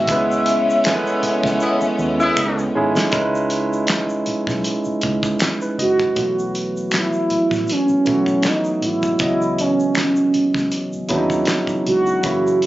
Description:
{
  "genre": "R&B, neo-soul",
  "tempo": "79 BPM",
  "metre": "4/4",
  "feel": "swing 56% on 16ths",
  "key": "C# minor",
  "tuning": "A4 = 443 Hz",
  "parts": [
    { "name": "mellow horn-like synth lead", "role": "melody", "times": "0.0-12.6 s", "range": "C#4 to E5", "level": "-19 LUFS", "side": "right 1 dB", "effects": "chorus, phaser, tape echo" },
    { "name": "barky tine electric piano", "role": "accompaniment", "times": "0.0-12.7 s", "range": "C#3 to D#5", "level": "-21 LUFS", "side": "right 1 dB", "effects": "overdrive" },
    { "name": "warm studio string section", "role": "sustained chords", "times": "0.0-3.1 s", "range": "C#3 to C#4", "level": "-26 LUFS", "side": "left 1 dB", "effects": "none" },
    { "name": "vintage muted fingered electric bass", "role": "bass", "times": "0.0-12.7 s", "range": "F#1 to D#2", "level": "-30 LUFS", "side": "left 1 dB", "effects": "none" },
    { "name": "cloth-damped thuddy drum kit", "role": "drums", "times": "0.1-12.7 s", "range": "handclaps, hi-hat, kick drum, snare drum", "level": "-24 LUFS", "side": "equal", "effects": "none" },
    { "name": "tube shaker and finger snaps", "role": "percussion", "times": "0.1-12.7 s", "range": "none", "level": "-28 LUFS", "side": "left 1 dB", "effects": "none" },
    { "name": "warm horn section", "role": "stabs", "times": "1.6-2.7 s", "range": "G#3 to E4", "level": "-19 LUFS", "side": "left 1 dB", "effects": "none" }
  ],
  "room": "light reverb",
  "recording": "recorded on a phone in the room, studio ambience, compression, nothing above 7.6 kHz",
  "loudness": "-16 LUFS",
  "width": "side -15 dB against mid",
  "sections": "0.0-3.1 A section; 3.1-6.2 B section; 6.2-12.7 C section",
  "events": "band accent 0.1-3.1; drum fill 1.6-3.1",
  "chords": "0.1 C#m9; 6.2 B7sus4; 9.2 C#m11",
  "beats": "| 0.09 0.85 1.61 2.37 | 3.13 3.89 4.65 5.41 | 6.17 6.92 7.68 8.44 | 9.20 9.96 10.72 11.48 | 12.24"
}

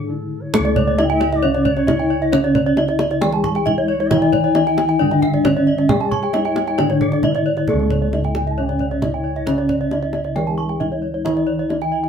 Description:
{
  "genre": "Balinese gamelan",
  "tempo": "134 BPM",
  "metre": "4/4",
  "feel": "straight",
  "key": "C# pelog",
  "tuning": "A4 = 439 Hz",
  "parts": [
    { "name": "gamelan-type bronze metallophone", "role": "melody", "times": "0.0-12.1 s", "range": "A3-40c to G#4-45c", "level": "-20 LUFS", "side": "left 2 dB", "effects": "none" },
    { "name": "mellow bansuri", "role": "second line", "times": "0.0-12.1 s", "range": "A4-45c to A5-45c", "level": "-27 LUFS", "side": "left 4 dB", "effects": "none" },
    { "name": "gamelan-type bronze metallophone", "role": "accompaniment", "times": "0.0-12.1 s", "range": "C#3 to A3-40c", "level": "-25 LUFS", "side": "left 1 dB", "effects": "none" },
    { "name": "gamelan-type bossed gongs", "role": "bass", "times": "0.0-12.1 s", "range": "C#2 to A4-40c", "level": "-23 LUFS", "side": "equal", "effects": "none" },
    { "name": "gamelan-type bronze metallophone", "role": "arpeggios", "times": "0.5-12.0 s", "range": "A4-40c to C#6", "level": "-25 LUFS", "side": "left 1 dB", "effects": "none" },
    { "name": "kendang", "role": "percussion", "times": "0.5-12.1 s", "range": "none", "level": "-24 LUFS", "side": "right 2 dB", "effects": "none" },
    { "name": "gamelan-type bronze metallophone", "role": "arpeggios", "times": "0.6-12.1 s", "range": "C#5 to A5-40c", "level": "-24 LUFS", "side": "right 3 dB", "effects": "none" }
  ],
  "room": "moderate studio ambience, RT60 0.5 s",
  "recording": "band playing live in one room",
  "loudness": "-16 LUFS",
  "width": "side -7 dB against mid",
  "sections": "0.0-7.7 A section; 7.7-12.1 A section",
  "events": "break 0.0-0.5",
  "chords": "none",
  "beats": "0.09 | 0.54 0.99 1.43 1.88 | 2.33 2.77 3.22 3.67 | 4.11 4.56 5.00 5.45 | 5.90 6.34 6.79 7.24 | 7.68 8.13 8.58 9.02 | 9.47 9.91 10.36 10.81 | 11.25 11.70"
}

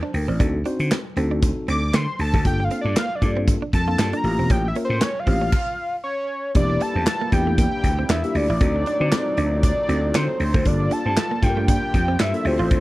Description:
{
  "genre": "early-eighties boogie funk",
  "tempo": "117 BPM",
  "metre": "4/4",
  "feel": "swing 56% on 16ths",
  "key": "D minor",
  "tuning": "A4 = 440 Hz",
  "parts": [
    { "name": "tine electric piano", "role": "accompaniment", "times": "0.0-12.8 s", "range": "Bb3 to A5", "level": "-26 LUFS", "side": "left 2 dB", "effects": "none" },
    { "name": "direct-recorded clean electric guitar", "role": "riff", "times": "0.0-12.7 s", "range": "A3 to F4", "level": "-29 LUFS", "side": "right 5 dB", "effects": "wide subtle chorus" },
    { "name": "vintage slap bass", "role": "bass", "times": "0.1-12.8 s", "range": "E1 to D3", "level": "-22 LUFS", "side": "equal", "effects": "none" },
    { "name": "modern studio drum kit", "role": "drums", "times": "0.1-12.8 s", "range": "crash cymbal, handclaps, hi-hat, kick drum, snare drum", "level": "-22 LUFS", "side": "equal", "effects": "none" },
    { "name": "fat analog lead", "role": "melody", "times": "1.7-12.8 s", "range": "C5 to D6", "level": "-25 LUFS", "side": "equal", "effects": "slapback echo" },
    { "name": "musette accordion", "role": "sustained chords", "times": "6.5-12.8 s", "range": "Bb2 to E5", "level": "-33 LUFS", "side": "left 2 dB", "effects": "none" }
  ],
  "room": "little or no reverb",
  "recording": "none",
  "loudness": "-18 LUFS",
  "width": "side -18 dB against mid",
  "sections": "0.0-6.6 A section; 6.6-12.8 B section",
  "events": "analog synth lead solo 0.0-6.6; stop 5.5-6.6",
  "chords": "0.4 D7b9; 2.5 Gm9; 4.2 A7b9b13; 6.6 Em7b5; 8.6 D7b9; 10.7 Gm9",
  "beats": "| 0.40 0.91 1.43 1.94 | 2.45 2.96 3.48 3.99 | 4.50 5.02 5.53 6.04 | 6.55 7.07 7.58 8.09 | 8.61 9.12 9.63 10.14 | 10.66 11.17 11.68 12.20 | 12.71"
}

